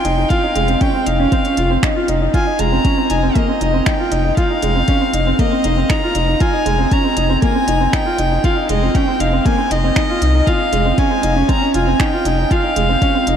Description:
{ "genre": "piano and strings electronica", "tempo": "118 BPM", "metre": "4/4", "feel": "straight", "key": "F minor", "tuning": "A4 = 440 Hz", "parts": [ { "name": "rich violin", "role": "melody", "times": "0.0-13.4 s", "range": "Eb5 to Bb5", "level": "-20 LUFS", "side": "left 1 dB", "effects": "tape echo, shimmer reverb" }, { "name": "clear baby grand piano", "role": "riff", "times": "0.0-13.4 s", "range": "Ab3 to F4", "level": "-17 LUFS", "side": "right 2 dB", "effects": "tape echo, shimmer reverb" }, { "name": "round analog bass", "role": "bass", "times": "0.0-13.4 s", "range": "F1 to C2", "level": "-18 LUFS", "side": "equal", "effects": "sidechain pumping" }, { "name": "organic electronic drum kit", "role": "drums", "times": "0.0-13.4 s", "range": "finger snaps, hi-hat", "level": "-28 LUFS", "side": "right 2 dB", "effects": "overdrive" }, { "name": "electronic kick drum", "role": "drums", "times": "0.3-13.1 s", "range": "none", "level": "-18 LUFS", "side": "equal", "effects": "none" } ], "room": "moderate huge ambient reverb, RT60 8.6 s", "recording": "dreamy mix soaked in reverb", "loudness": "-13 LUFS", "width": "side -8 dB against mid", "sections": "0.0-13.4 A section", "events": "none", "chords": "0.0 Dbmaj7/F (rootless); 2.3 Fm7; 10.5 Dbmaj7/F", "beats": "| 0.30 0.81 1.32 1.83 | 2.34 2.85 3.35 3.86 | 4.37 4.88 5.39 5.90 | 6.41 6.91 7.42 7.93 | 8.44 8.95 9.46 9.96 | 10.47 10.98 11.49 12.00 | 12.51 13.02" }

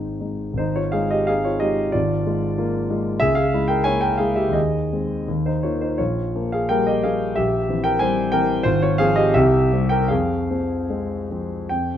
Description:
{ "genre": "classical, romantic character piece for solo piano", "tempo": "71-97 BPM", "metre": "2/4", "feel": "rubato", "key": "Ab major, F minor from 6.0 s", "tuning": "A4 = 437 Hz", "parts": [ { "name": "warm concert grand piano", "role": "solo", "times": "0.0-12.0 s", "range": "Ab1 to Ab5", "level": "-18 LUFS", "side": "equal", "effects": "none" } ], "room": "moderate large studio reverb, RT60 0.8 s", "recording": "dark, warm production", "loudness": "-18 LUFS", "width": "side -10 dB against mid", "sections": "0.6-11.7 A section", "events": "none", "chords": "0.0 Ab; 1.9 Bb7/Ab; 3.2 Bbm7b5/Db; 4.6 Ab/Eb; 5.3 Eb5; 6.0 Bbm6; 7.4 C7/Bb; 8.7 Fm/Ab; 9.3 C7; 10.1 Fm", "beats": "| 0.60 1.28 | 1.94 2.59 | 3.22 3.85 | 4.56 5.28 | 6.00 6.70 | 7.37 8.01 | 8.65 9.34 | 10.10 10.90 | 11.70" }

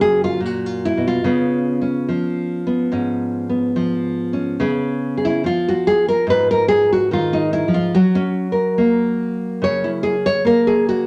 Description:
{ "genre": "solo jazz", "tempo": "72 BPM", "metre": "4/4", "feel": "swing 67% on 8ths", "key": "Db mixolydian", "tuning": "A4 = 441 Hz", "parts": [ { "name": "nylon-string guitar", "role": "solo", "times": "0.0-11.1 s", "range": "Gb2 to Db5", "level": "-18 LUFS", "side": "equal", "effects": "none" } ], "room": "moderate studio reverb, RT60 0.7 s", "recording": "none", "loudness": "-19 LUFS", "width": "mono", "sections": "0.0-11.1 A section", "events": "nylon-string guitar solo 0.0-11.1", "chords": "0.0 Gb; 1.2 Db7; 7.9 Gb", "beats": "0.41 | 1.25 2.08 2.92 3.76 | 4.60 5.43 6.27 7.11 | 7.94 8.78 9.62 10.45" }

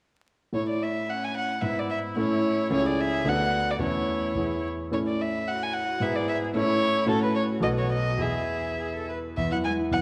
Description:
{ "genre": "quick classical-period movement for piano trio", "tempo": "109 BPM", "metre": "2/4", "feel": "rubato", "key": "A major", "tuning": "A4 = 438 Hz", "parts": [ { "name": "warm violin", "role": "melody", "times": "0.5-10.0 s", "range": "A4 to G#5", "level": "-31 LUFS", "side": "equal", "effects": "none" }, { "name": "clear concert grand piano", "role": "accompaniment", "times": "0.5-10.0 s", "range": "B1 to C#5", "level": "-29 LUFS", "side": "equal", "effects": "none" }, { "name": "dark cello", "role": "second line", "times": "1.1-10.0 s", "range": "E3 to B4", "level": "-37 LUFS", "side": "equal", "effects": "none" } ], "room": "wet recital hall reverb, RT60 1.8 s", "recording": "vinyl crackle", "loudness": "-27 LUFS", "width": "mono", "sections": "0.5-9.4 A section", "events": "none", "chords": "0.5 A; 1.6 E/G#; 2.2 A; 2.7 A/C#; 3.3 Bm7/D; 3.8 A/E; 4.4 E; 4.9 A; 6.0 E/G#; 6.6 A; 7.1 F#m/A; 7.6 B7; 8.2 E; 9.4 E5", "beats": "| 0.54 1.09 | 1.63 2.18 | 2.72 3.26 | 3.81 4.36 | 4.92 5.48 | 6.02 6.56 | 7.09 7.64 | 8.21 8.79 | 9.37 9.93" }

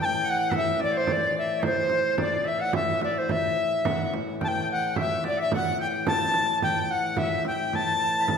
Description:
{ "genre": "medieval dance", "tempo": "108 BPM", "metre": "2/4", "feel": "straight", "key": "A dorian", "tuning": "A4 = 440 Hz", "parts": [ { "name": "bright reedy tenor recorder", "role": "melody", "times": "0.0-8.4 s", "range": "C5 to A5", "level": "-25 LUFS", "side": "left 1 dB", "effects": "none" }, { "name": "edgy shawm", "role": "second line", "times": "0.0-8.4 s", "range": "C5 to B5", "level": "-31 LUFS", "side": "left 2 dB", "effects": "none" }, { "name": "hand-pumped harmonium", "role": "drone", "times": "0.0-8.4 s", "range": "A2 to E3", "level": "-33 LUFS", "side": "left 3 dB", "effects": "none" }, { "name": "frame drum", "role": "percussion", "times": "0.5-8.4 s", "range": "none", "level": "-30 LUFS", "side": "right 4 dB", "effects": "none" } ], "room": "wet scoring stage reverb, RT60 1.6 s", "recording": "recorded in a church or concert hall", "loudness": "-23 LUFS", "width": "side -6 dB against mid", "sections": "0.0-8.4 A section", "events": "none", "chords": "none", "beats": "0.52 | 1.08 1.63 | 2.19 2.74 | 3.30 3.85 | 4.41 4.96 | 5.51 6.07 | 6.62 7.18 | 7.73 8.29" }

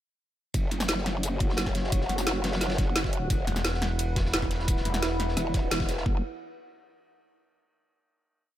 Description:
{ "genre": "dark technical drum and bass", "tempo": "174 BPM", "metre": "4/4", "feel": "straight", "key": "unclear", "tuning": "A4 = 439 Hz", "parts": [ { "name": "dark analog pad", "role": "sustained chords", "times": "1.0-6.2 s", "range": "E4 to F#5", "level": "-34 LUFS", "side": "right 1 dB", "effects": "chorus, sidechain pumping" }, { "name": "growl bass", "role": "bass", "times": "0.5-6.2 s", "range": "E1 to F#1", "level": "-30 LUFS", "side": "equal", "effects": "chorus, tube saturation" }, { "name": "crunchy breakbeat drum kit", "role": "drums", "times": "0.5-6.1 s", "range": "ride cymbal, snare drum", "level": "-38 LUFS", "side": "equal", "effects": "high-pass filter on cymbals, high-pass filter on snare, high-pass filter on room" }, { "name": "drum and bass drum kit", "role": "drums", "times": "0.5-6.0 s", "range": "hi-hat, snare drum, tambourine", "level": "-30 LUFS", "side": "equal", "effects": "none" }, { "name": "electronic kick drum", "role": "drums", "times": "0.5-6.1 s", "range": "none", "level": "-28 LUFS", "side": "equal", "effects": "overdrive" }, { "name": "growling FM bass", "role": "bass", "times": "3.5-5.4 s", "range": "E1", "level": "-29 LUFS", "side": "equal", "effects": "none" } ], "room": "little or no reverb", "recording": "none", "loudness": "-25 LUFS", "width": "side -12 dB against mid", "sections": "0.5-6.1 drop; 6.1-7.4 final chord", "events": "drop 0.5-6.1; band accent 5.7", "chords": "0.5 F#5; 3.3 Esus2; 6.1 F#5", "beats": "| 0.54 0.89 1.23 1.58 | 1.92 2.27 2.61 2.96 | 3.30 3.65 3.99 4.34 | 4.68 5.03 5.37 5.71 | 6.06" }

